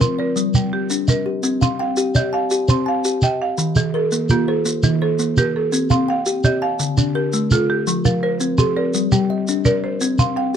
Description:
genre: southern african traditional, mbira-style interlocking cycle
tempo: 112 BPM (dotted quarters)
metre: 12/8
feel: straight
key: C equiheptatonic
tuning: A4 = 440 Hz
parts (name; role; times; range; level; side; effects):
- buzzing marimba with medium hard mallets; arpeggios; 0.0-10.6 s; D3-29c to G5; -21 LUFS; right 3 dB; none
- kalimba; arpeggios; 0.0-10.6 s; D3-29c to A5-43c; -21 LUFS; left 4 dB; none
- shekere; percussion; 0.0-10.4 s; none; -19 LUFS; right 2 dB; none
room: light reverb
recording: dark, warm production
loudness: -16 LUFS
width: side -8 dB against mid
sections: 0.0-1.4 A section; 1.4-10.6 B section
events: none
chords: 0.4 Gm; 1.4 Cm; 3.6 Eb; 5.7 Cm; 6.8 Dm; 7.9 F; 8.9 Gm; 10.0 C5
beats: 0.36 0.90 | 1.44 1.98 2.51 3.05 | 3.59 4.12 4.66 5.19 | 5.73 6.26 6.80 7.34 | 7.87 8.41 8.94 9.48 | 10.01 10.55

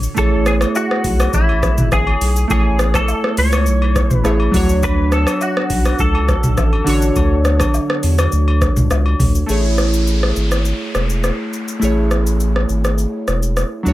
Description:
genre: afrobeats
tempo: 103 BPM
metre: 4/4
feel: straight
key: A major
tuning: A4 = 441 Hz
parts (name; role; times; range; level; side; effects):
- glassy digital keys; accompaniment; 0.0-13.9 s; D3 to C#5; -20 LUFS; right 1 dB; chorus
- booming analog drum machine; drums; 0.0-13.9 s; hi-hat, kick drum, rim click, shaker, toms; -18 LUFS; equal; none
- direct-recorded clean electric guitar; melody; 0.2-8.9 s; E4 to C#5; -22 LUFS; left 1 dB; ensemble chorus, tape echo
- saturated sub bass; bass; 0.2-13.9 s; E1 to E2; -17 LUFS; equal; none
- agogo bells and woodblock; percussion; 0.2-9.2 s; none; -27 LUFS; left 4 dB; none
- downlifter; sound effects; 9.5-13.9 s; none; -29 LUFS; equal; none
room: little or no reverb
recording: none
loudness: -14 LUFS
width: side -15 dB against mid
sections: 0.0-9.5 A section; 9.5-13.9 B section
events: break 9.5-13.9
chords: 0.2 Amaj7; 4.5 Dmaj7; 9.5 Amaj7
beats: | 0.17 0.75 1.33 1.92 | 2.50 3.08 3.67 4.25 | 4.83 5.41 6.00 6.58 | 7.16 7.74 8.32 8.91 | 9.49 10.07 10.65 11.24 | 11.82 12.40 12.98 13.57

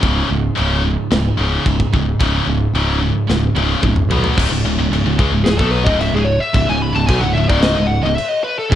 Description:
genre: heavy metal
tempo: 110 BPM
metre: 4/4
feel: straight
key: unclear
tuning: A4 = 440 Hz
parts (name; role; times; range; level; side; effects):
- heavy high-gain guitar; riff; 0.0-8.8 s; C#2 to B3; -20 LUFS; left 8 dB; distortion
- scooped high-gain guitar; riff; 0.0-8.8 s; C#2 to B3; -20 LUFS; right 6 dB; distortion
- modern bright picked electric bass; bass; 0.0-8.8 s; C#1 to C#2; -19 LUFS; equal; none
- tight metal drum kit; drums; 0.0-8.8 s; china cymbal, crash cymbal, kick drum, snare drum, toms; -20 LUFS; equal; none
- high-gain lead guitar; melody; 5.4-8.8 s; G#4 to B5; -19 LUFS; left 2 dB; distortion, tape echo
room: light reverb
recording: cassette tape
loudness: -14 LUFS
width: side -11 dB against mid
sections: 0.0-4.4 A section; 4.4-8.8 B section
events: drum fill 3.3-4.4; lead electric guitar solo 4.4-8.8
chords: 0.0 C#5; 4.1 B5; 4.4 C#5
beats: | 0.02 0.56 1.10 1.65 | 2.19 2.73 3.28 3.82 | 4.36 4.91 5.45 5.99 | 6.54 7.08 7.62 8.16 | 8.71

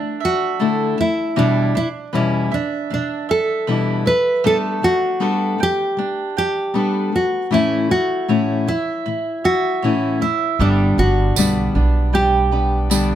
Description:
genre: acoustic pop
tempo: 78 BPM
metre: 4/4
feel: straight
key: unclear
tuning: A4 = 440 Hz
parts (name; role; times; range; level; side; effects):
- nylon-string guitar; melody; 0.0-13.2 s; C#4 to B4; -20 LUFS; right 1 dB; plate reverb
- fingerpicked steel-string acoustic guitar; accompaniment; 0.0-13.2 s; E2 to A4; -19 LUFS; left 3 dB; none
- mandolin; arpeggios; 0.0-13.2 s; G3 to G5; -26 LUFS; right 11 dB; none
- upright bass; bass; 10.6-13.2 s; G1 to B1; -18 LUFS; right 1 dB; none
- tambourine; percussion; 11.4-13.1 s; none; -22 LUFS; right 8 dB; none
room: moderate studio reverb, RT60 0.7 s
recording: none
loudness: -16 LUFS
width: side -11 dB against mid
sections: 0.0-10.6 A section; 10.6-13.2 B section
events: none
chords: 0.0 Dsus2; 1.4 Em7; 4.4 Gadd9; 7.5 A; 10.6 G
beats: 0.60 | 1.37 2.14 2.91 3.67 | 4.44 5.21 5.98 6.75 | 7.52 8.29 9.06 9.83 | 10.60 11.37 12.14 12.91

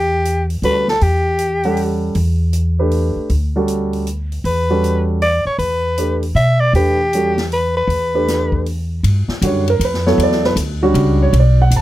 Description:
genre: modal jazz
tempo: 157 BPM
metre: 3/4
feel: swing 65% on 8ths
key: E dorian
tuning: A4 = 443 Hz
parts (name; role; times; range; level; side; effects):
- growling soprano saxophone; melody; 0.0-2.0, 4.5-8.6 s; G4 to E5; -17 LUFS; left 1 dB; none
- upright bass; bass; 0.0-11.8 s; G1 to B2; -17 LUFS; equal; none
- swinging big-band drum kit; drums; 0.3-11.8 s; hi-hat, kick drum, ride cymbal, snare drum; -28 LUFS; left 2 dB; none
- warm baby grand piano; accompaniment; 0.6-11.8 s; D3 to A5; -17 LUFS; right 2 dB; none
room: little or no reverb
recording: close, detailed microphones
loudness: -14 LUFS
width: side -14 dB against mid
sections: 0.0-9.0 A section; 9.0-11.8 B section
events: none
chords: 0.0 Em9; 2.2 Gadd9/E; 4.5 Em9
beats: 0.24 0.62 | 1.00 1.39 1.77 | 2.15 2.54 2.92 | 3.30 3.69 4.07 | 4.45 4.83 5.22 | 5.60 5.98 6.37 | 6.75 7.13 7.51 | 7.90 8.28 8.66 | 9.04 9.43 9.81 | 10.19 10.57 10.95 | 11.33 11.71

